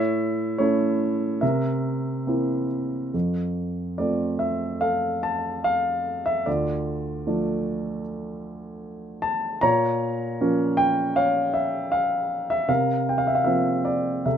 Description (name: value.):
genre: classical, lyrical solo piano.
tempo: 68-79 BPM.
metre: 4/4.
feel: rubato.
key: F major from 3.1 s.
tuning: A4 = 444 Hz.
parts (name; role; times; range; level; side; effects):
warm grand piano; solo; 0.0-14.4 s; D2 to Bb5; -22 LUFS; equal; none.
room: light reverb.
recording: nothing above 10.3 kHz.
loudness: -22 LUFS.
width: side -8 dB against mid.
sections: 0.0-3.1 A section; 3.1-14.4 B section.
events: none.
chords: 0.0 A; 1.4 C7; 3.1 F; 6.5 Dm; 9.6 Bbm; 12.7 C7sus4.